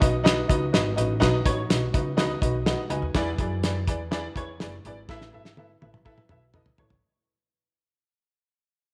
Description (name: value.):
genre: uptempo 1960s-style soul.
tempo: 124 BPM.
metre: 4/4.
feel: straight.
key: unclear.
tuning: A4 = 439 Hz.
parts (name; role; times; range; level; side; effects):
warm upright piano; accompaniment; 0.0-6.9 s; D#4 to G#5; -30 LUFS; equal; none.
upright bass; bass; 0.0-7.0 s; F#1 to F#2; -32 LUFS; equal; none.
cloth-damped thuddy drum kit; drums; 0.0-7.0 s; hi-hat, kick drum, snare drum, toms; -27 LUFS; equal; none.
room: moderate echo chamber reverb, RT60 1.8 s, small room reverb.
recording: none.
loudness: -25 LUFS.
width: mono.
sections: 0.0-7.0 A section.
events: fade-out 0.0-7.0; upright piano fill 2.2-3.2; drum fill 5.1-7.0.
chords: 0.0 B; 3.2 E7; 5.1 Asus2.